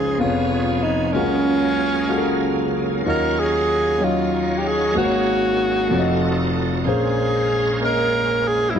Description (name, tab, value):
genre	slow gospel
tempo	63 BPM (dotted quarters)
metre	6/8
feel	straight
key	unclear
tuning	A4 = 442 Hz
part	breathy tenor saxophone	melody	0.0-8.8 s	Db4 to Bb4	-21 LUFS	right 1 dB	none
part	clear concert grand piano	accompaniment	0.0-8.8 s	F1 to Eb5	-21 LUFS	left 1 dB	none
part	bright tonewheel organ	sustained chords	0.0-8.8 s	Db3 to F5	-26 LUFS	right 3 dB	slow rotary speaker, chorus vibrato
room	moderate echo chamber reverb, RT60 2.1 s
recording	dark, warm production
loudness	-17 LUFS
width	side -8 dB against mid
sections	0.0-8.8 A section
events	none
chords	0.2 Db7/F; 1.1 Gbmaj9/Db; 3.1 Ebm9; 5.0 Ab9sus4; 5.9 F7b9; 6.9 Bbm9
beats	0.19 | 1.15 2.10 | 3.05 4.00 | 4.96 5.91 | 6.86 7.81 | 8.77